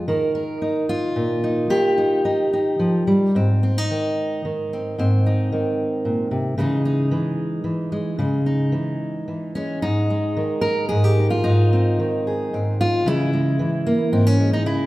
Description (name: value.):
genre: folk, solo fingerstyle acoustic guitar.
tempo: 111 BPM.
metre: 3/4.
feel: rubato.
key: Ab major.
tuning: A4 = 440 Hz.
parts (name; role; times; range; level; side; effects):
fingerpicked steel-string acoustic guitar; solo; 0.0-14.9 s; Ab2 to Bb4; -18 LUFS; equal; none.
room: wet recital hall reverb, RT60 1.4 s.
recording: recorded in a church or concert hall.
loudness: -18 LUFS.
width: side -17 dB against mid.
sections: 0.0-3.4 A section; 3.4-9.8 B section; 9.8-14.9 C section.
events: none.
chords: 0.1 Eb; 3.4 Ab; 6.6 Dbmadd9; 9.8 Ab; 13.1 Dbm.